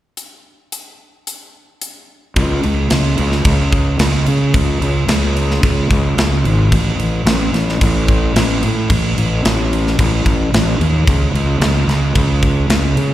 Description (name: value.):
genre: heavy metal.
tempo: 110 BPM.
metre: 4/4.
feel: straight.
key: unclear.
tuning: A4 = 442 Hz.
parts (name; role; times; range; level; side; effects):
tight metal drum kit; drums; 0.2-13.1 s; crash cymbal, hi-hat, kick drum, snare drum; -17 LUFS; equal; none.
fuzz fingered electric bass; bass; 2.4-13.1 s; G#1 to C#3; -14 LUFS; equal; overdrive.
room: little or no reverb.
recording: live gig heard through the venue's PA, recital hall reverb.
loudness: -13 LUFS.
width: side -13 dB against mid.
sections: 0.2-2.4 A section; 2.4-13.1 B section.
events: none.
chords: none.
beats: | 0.18 0.72 1.27 1.82 | 2.36 2.91 3.45 4.00 | 4.54 5.09 5.63 6.18 | 6.72 7.27 7.81 8.36 | 8.90 9.45 9.99 10.53 | 11.07 11.62 12.16 12.70.